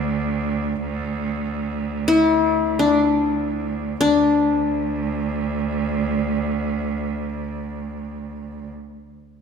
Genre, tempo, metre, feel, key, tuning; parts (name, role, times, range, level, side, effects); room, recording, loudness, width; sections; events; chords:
Turkish makam ensemble; free time; A4 = 439 Hz
qanun; melody; 0.0-8.7 s; D4 to E4-30c; -18 LUFS; left 4 dB
bright cello; drone; 0.0-8.7 s; D2; -24 LUFS; right 4 dB
wet recital hall reverb, RT60 1.7 s; minimal, uncompressed stereo recording; -19 LUFS; side -6 dB against mid
0.0-4.0 A section; 4.0-9.4 B section
slowing down 0.0-4.0